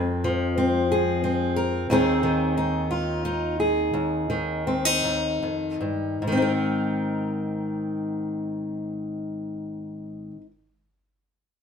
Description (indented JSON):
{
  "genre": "folk",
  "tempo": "48-61 BPM (dotted quarters)",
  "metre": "6/8",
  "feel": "straight",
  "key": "Ab major",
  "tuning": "A4 = 442 Hz",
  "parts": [
    { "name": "fingerpicked steel-string acoustic guitar", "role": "accompaniment", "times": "0.0-10.5 s", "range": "Eb2 to Bb4", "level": "-23 LUFS", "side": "left 1 dB", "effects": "none" }
  ],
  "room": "moderate studio reverb, RT60 0.8 s",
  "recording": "band playing live in one room",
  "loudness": "-23 LUFS",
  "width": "side -7 dB against mid",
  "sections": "0.0-6.2 A section; 6.2-11.2 B section",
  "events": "slowing down 1.9-6.2",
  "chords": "0.0 Fm; 1.9 Ab/Eb; 6.2 Abadd9"
}